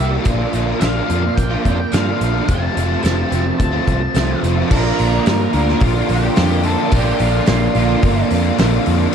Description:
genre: rock, shoegaze and dream pop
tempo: 108 BPM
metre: 4/4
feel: straight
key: unclear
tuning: A4 = 440 Hz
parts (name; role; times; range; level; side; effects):
- octave-fuzz lead guitar; melody; 0.0-8.3 s; F4 to A5; -25 LUFS; left 1 dB; distortion, tape echo
- string machine, violas; sustained chords; 0.0-9.1 s; E4 to C6; -29 LUFS; equal; none
- crunchy overdriven guitar; riff; 0.0-9.1 s; F2 to G4; -22 LUFS; right 11 dB; reverse reverb
- overdriven semi-hollow guitar; riff; 0.0-9.1 s; F2 to G4; -23 LUFS; left 12 dB; ensemble chorus
- vintage muted picked electric bass; bass; 0.0-9.1 s; F1 to G2; -19 LUFS; equal; none
- overdriven electric guitar; riff; 0.2-9.1 s; F2 to D4; -23 LUFS; right 2 dB; none
- loose indie drum kit; drums; 0.3-9.1 s; crash cymbal, hi-hat, kick drum, snare drum; -21 LUFS; equal; none
- tambourine; percussion; 0.8-4.3, 9.1 s; none; -37 LUFS; right 15 dB; none
room: small room reverb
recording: dark, warm production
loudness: -14 LUFS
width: side -7 dB against mid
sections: 0.0-4.7 A section; 4.7-9.1 B section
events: none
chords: 0.2 Bbmaj7; 2.5 Fmaj7; 4.7 Bbadd9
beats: | 0.25 0.81 1.36 1.92 | 2.48 3.04 3.60 4.15 | 4.71 5.26 5.82 6.37 | 6.93 7.48 8.03 8.59 | 9.14

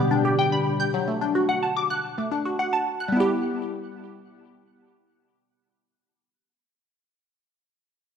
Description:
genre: pop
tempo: 109 BPM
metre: 4/4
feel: straight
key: E minor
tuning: A4 = 440 Hz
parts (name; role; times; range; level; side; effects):
- glassy FM pad; sustained chords; 0.0-0.9 s; B2 to G4; -26 LUFS; left 1 dB; ensemble chorus, built-in reverb
- glassy wavetable pluck; arpeggios; 0.0-6.8 s; F#3 to G6; -23 LUFS; left 1 dB; chorus, ping-pong delay
room: wet lush hall reverb, RT60 1.9 s, digital ambience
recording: none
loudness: -22 LUFS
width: side -7 dB against mid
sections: 0.0-3.1 A section; 3.1-5.3 B section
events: none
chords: 0.0 G; 0.9 D/F#; 3.1 Em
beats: 0.39 | 0.94 1.49 2.04 2.59 | 3.14 3.69 4.24 4.79

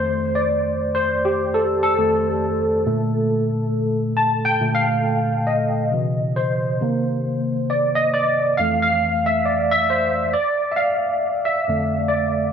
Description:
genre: R&B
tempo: 68 BPM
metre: 4/4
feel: swing 58% on 16ths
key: F major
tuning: A4 = 439 Hz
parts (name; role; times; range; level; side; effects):
- barky tine electric piano; solo; 0.0-12.5 s; F2 to A5; -18 LUFS; equal; overdrive, ensemble chorus
room: light reverb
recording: none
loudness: -18 LUFS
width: side -7 dB against mid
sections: 0.0-10.3 A section; 10.3-12.5 B section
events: tine electric piano solo 0.0-10.3, 10.3-12.5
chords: 0.0 F7; 2.8 Bbmaj7; 5.9 Dbm9; 6.8 Cm7; 8.6 Fmaj7; 10.3 F6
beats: 0.62 1.50 2.39 | 3.27 4.15 5.03 5.92 | 6.80 7.68 8.56 9.44 | 10.33 11.21 12.09

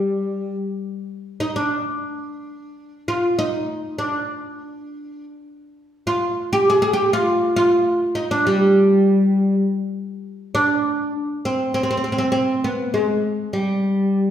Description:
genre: arabic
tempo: 100 BPM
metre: 4/4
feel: straight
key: G maqam hijaz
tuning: A4 = 440 Hz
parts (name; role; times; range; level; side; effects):
- oud; solo; 0.0-14.3 s; G3 to Ab4+25c; -18 LUFS; equal; none
room: wet recital hall reverb, RT60 1.4 s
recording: heard from further back in the room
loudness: -18 LUFS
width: side -10 dB against mid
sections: 0.0-10.6 A section; 10.6-14.3 B section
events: none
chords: none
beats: 0.36 | 0.97 1.57 2.17 2.77 | 3.37 3.97 4.57 5.17 | 5.77 6.37 6.97 7.57 | 8.17 8.77 9.37 9.97 | 10.57 11.17 11.77 12.37 | 12.97 13.57 14.17

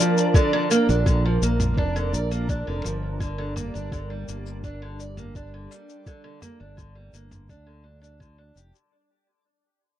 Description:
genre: folktronica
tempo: 84 BPM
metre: 4/4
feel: straight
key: unclear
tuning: A4 = 440 Hz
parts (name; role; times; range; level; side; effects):
- warm analog pad; sustained chords; 0.0-8.9 s; F3 to Bb4; -28 LUFS; right 1 dB; chorus
- picked acoustic archtop guitar; arpeggios; 0.0-8.7 s; D3 to D5; -27 LUFS; right 2 dB; vintage 12-bit sampler grit, low-pass filter, tape echo
- electronic shaker and toms; drums; 0.0-8.9 s; none; -31 LUFS; left 2 dB; none
- backwards swelling texture; texture; 0.0-8.9 s; D5; -34 LUFS; equal; built-in reverb
- electronic kick drum; drums; 0.3-8.3 s; none; -22 LUFS; equal; overdrive
- modern bright fingered electric bass; bass; 0.9-8.7 s; F1 to D2; -27 LUFS; equal; none
room: little or no reverb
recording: dry, close 1970s-style studio recording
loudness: -21 LUFS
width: side -11 dB against mid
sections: 0.0-8.9 A section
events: fade-out 0.0-8.9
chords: 0.0 Bb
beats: | 0.34 1.06 1.77 2.49 | 3.20 3.92 4.63 5.34 | 6.06 6.77 7.49 8.20

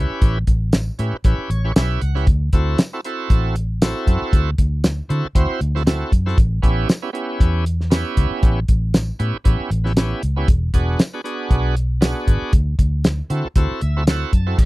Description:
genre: straight-eighth soul blues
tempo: 117 BPM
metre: 4/4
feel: swing 55% on 16ths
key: A mixolydian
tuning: A4 = 440 Hz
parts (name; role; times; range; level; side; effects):
- bright tonewheel organ; accompaniment; 0.0-14.6 s; B3 to A5; -24 LUFS; right 2 dB; slow rotary speaker, overdrive
- vintage muted fingered electric bass; bass; 0.0-14.7 s; E1 to D3; -20 LUFS; equal; none
- cloth-damped thuddy drum kit; drums; 0.2-14.7 s; crash cymbal, hi-hat, kick drum, snare drum, tambourine; -16 LUFS; equal; none
room: little or no reverb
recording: dry, close 1970s-style studio recording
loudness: -16 LUFS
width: side -20 dB against mid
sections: 0.0-14.7 A section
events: tonewheel organ fill 1.2-2.3, 13.6-14.6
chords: 0.0 A7; 2.3 D7; 6.4 A7; 10.5 E7; 12.5 D7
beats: | 0.22 0.73 1.24 1.76 | 2.27 2.78 3.30 3.81 | 4.32 4.84 5.35 5.86 | 6.38 6.89 7.40 7.91 | 8.43 8.94 9.45 9.96 | 10.48 10.99 11.50 12.02 | 12.53 13.04 13.55 14.06 | 14.58

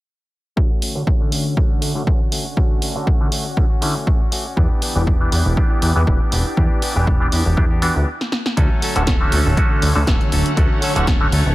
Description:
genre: filtered disco house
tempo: 120 BPM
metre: 4/4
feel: swing 55% on 16ths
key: D major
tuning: A4 = 439 Hz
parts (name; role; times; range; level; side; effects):
- clav; accompaniment; 0.6-11.3 s; D3 to B4; -24 LUFS; equal; phaser, sidechain pumping, low-pass filter
- phased string machine; sustained chords; 0.6-11.5 s; D3 to D6; -28 LUFS; equal; ensemble chorus, phaser, sidechain pumping, low-pass filter
- direct-recorded clean electric guitar; riff; 0.6-11.5 s; E3 to A4; -27 LUFS; left 2 dB; sidechain pumping, low-pass filter
- electronic kick drum; drums; 0.6-11.2 s; none; -17 LUFS; equal; none
- punchy analog drum machine; drums; 0.8-11.4 s; hi-hat, snare drum; -24 LUFS; equal; sidechain pumping on hats
- plucky analog bass; bass; 4.6-11.5 s; D1 to E2; -18 LUFS; equal; sidechain pumping, low-pass filter
room: light reverb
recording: none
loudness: -15 LUFS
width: side -18 dB against mid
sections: 0.6-8.6 A section; 8.6-11.5 B section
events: filter sweep 0.6-8.6; stop 8.1-8.6; drum fill 8.2-8.6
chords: 0.6 Dmaj7; 4.6 Em7; 8.6 Dmaj7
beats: | 0.57 1.07 1.57 2.07 | 2.57 3.07 3.57 4.07 | 4.57 5.07 5.57 6.07 | 6.57 7.07 7.57 8.07 | 8.57 9.07 9.57 10.07 | 10.57 11.07

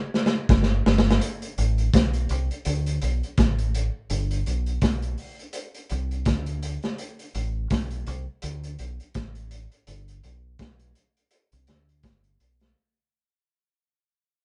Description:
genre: lovers rock reggae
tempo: 83 BPM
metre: 4/4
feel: swing 57% on 16ths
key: G major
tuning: A4 = 436 Hz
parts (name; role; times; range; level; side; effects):
- crunchy breakbeat drum kit; drums; 0.1-12.8 s; hi-hat, kick drum, snare drum; -26 LUFS; equal; none
- deep dub fingered electric bass; bass; 0.5-12.7 s; G1 to D2; -28 LUFS; equal; none
room: moderate small room reverb, RT60 0.5 s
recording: band playing live in one room, nothing above 10.5 kHz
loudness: -25 LUFS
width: mono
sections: 0.0-1.2 A section; 1.2-12.8 B section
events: drum fill 0.0-1.2; fade-out 1.2-12.8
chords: none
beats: 0.49 | 1.22 1.94 2.66 3.38 | 4.10 4.82 5.55 6.27 | 6.99 7.71 8.43 9.15 | 9.87 10.60 11.32 12.04

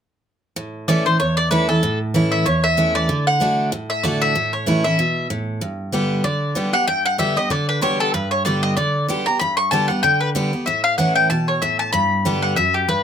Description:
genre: bluegrass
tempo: 190 BPM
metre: 4/4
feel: swing 56% on 8ths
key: A mixolydian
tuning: A4 = 435 Hz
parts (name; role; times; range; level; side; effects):
- picked steel-string acoustic guitar; accompaniment; 0.6-13.0 s; E2 to G4; -20 LUFS; right 1 dB; none
- mandolin; melody; 0.9-13.0 s; G4 to C#6; -19 LUFS; left 2 dB; none
room: light reverb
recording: close, detailed microphones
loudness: -17 LUFS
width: side -8 dB against mid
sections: 0.6-13.0 A section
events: none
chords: 0.6 A; 3.1 D; 4.4 A; 5.6 G; 10.7 A; 11.9 G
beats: | 0.56 0.88 1.19 1.51 | 1.83 2.14 2.46 2.77 | 3.09 3.41 3.72 4.04 | 4.35 4.67 4.99 5.30 | 5.62 5.93 6.25 6.56 | 6.88 7.19 7.51 7.82 | 8.14 8.45 8.77 9.09 | 9.40 9.72 10.03 10.35 | 10.66 10.98 11.30 11.62 | 11.93 12.25 12.56 12.88

